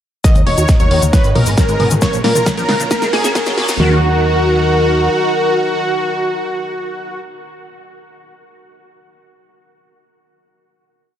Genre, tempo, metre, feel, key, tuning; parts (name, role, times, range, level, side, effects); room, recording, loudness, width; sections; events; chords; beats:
uplifting trance; 135 BPM; 4/4; straight; Eb minor; A4 = 440 Hz
dense compressed supersaw; melody; 0.2-7.2 s; Gb4 to Eb5; -18 LUFS; equal; sidechain pumping, dub echo
warm velvety synth lead; second line; 0.2-7.2 s; Bb4 to Eb5; -21 LUFS; left 1 dB; chorus, dub echo
lush unison pad; sustained chords; 0.2-7.2 s; Eb3 to Db5; -25 LUFS; right 1 dB; chorus, sidechain pumping
liquid acid bass; arpeggios; 0.2-4.0 s; Db3 to Gb4; -23 LUFS; left 2 dB; phaser, ensemble chorus, sidechain pumping, dub echo
big-room dance drum kit; drums; 0.2-3.9 s; kick drum, snare drum; -13 LUFS; equal
big-room dance drum kit; drums; 0.2-3.8 s; hi-hat, snare drum, toms; -21 LUFS; equal; sidechain pumping on hats, sidechain pumping on toms
cabasa; percussion; 0.2-3.8 s; -25 LUFS; left 5 dB
riser; sound effects; 2.0-3.8 s; -28 LUFS; equal
plucky analog bass; bass; 0.4-5.1 s; Eb1 to Bb2; -17 LUFS; equal; sidechain pumping
light reverb; dark, warm production, high-pass filter; -12 LUFS; side -10 dB against mid
0.2-3.8 build; 3.8-7.4 final chord
build-up 0.2-3.8; drum fill 0.2-3.8; filter sweep on acid bass 0.2-3.8; filter sweep 0.2-3.8; riser 2.0-3.8
0.2 Ebm; 1.1 Abm; 2.0 Bbm; 2.9 Gb; 3.8 Ebm
| 0.24 0.69 1.13 1.58 | 2.02 2.46 2.91 3.35 | 3.80 4.24 4.69 5.13 | 5.58 6.02 6.46 6.91